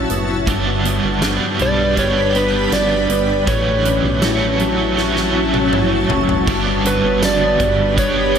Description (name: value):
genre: dream pop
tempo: 80 BPM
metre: 4/4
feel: straight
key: G lydian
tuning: A4 = 441 Hz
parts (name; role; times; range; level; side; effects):
- shimmering ambient pad; sustained chords; 0.0-8.4 s; D4 to B5; -22 LUFS; right 1 dB; chorus, built-in reverb, phaser
- mellow electric guitar; arpeggios; 0.0-8.4 s; G2 to E4; -22 LUFS; left 5 dB; ensemble chorus, ping-pong delay
- chorused synth bass; bass; 0.0-8.4 s; F#1 to B1; -24 LUFS; equal; none
- huge arena drum kit; drums; 0.1-8.4 s; crash cymbal, hi-hat, kick drum, snare drum, tambourine, toms; -23 LUFS; equal; none
- cranked stack guitar; accompaniment; 0.5-8.4 s; G2 to G4; -20 LUFS; right 5 dB; overdrive, tremolo, ensemble chorus
- electric slide guitar; melody; 1.6-8.4 s; B4 to D5; -20 LUFS; right 1 dB; ping-pong delay
room: moderate huge ambient reverb, RT60 5.5 s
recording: none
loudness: -14 LUFS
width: side -7 dB against mid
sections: 0.0-6.5 A section; 6.5-8.4 B section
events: drum fill 5.0-6.5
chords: 0.5 G; 3.5 A6; 6.5 G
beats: | 0.47 1.22 1.97 2.72 | 3.47 4.22 4.97 5.72 | 6.47 7.22 7.97